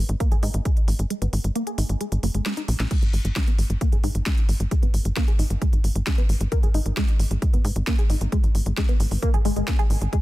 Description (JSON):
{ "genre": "driving peak-time techno", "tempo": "133 BPM", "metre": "4/4", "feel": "straight", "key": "G# minor", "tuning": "A4 = 441 Hz", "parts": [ { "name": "tight sequencer bass", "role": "bass", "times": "0.0-10.1 s", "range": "F#1 to G#2", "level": "-24 LUFS", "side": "equal", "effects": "sidechain pumping" }, { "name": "techno drum kit", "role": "drums", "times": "0.1-10.2 s", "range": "crash cymbal, hi-hat, snare drum", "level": "-32 LUFS", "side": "equal", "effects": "none" }, { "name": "tight sequenced synth", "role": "riff", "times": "0.2-10.2 s", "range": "G#3 to G#4", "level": "-31 LUFS", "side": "equal", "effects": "chorus, phaser, sidechain pumping, ping-pong delay" }, { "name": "electronic kick drum", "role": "drums", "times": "0.2-10.2 s", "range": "none", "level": "-21 LUFS", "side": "equal", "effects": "none" } ], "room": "digital ambience", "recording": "dense, heavily limited modern master", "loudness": "-20 LUFS", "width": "side -17 dB against mid", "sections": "0.0-10.2 A section", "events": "filter sweep on synth arpeggio sound 0.0-10.2; break 1.1-2.9; drum fill 2.5-2.9", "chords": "none" }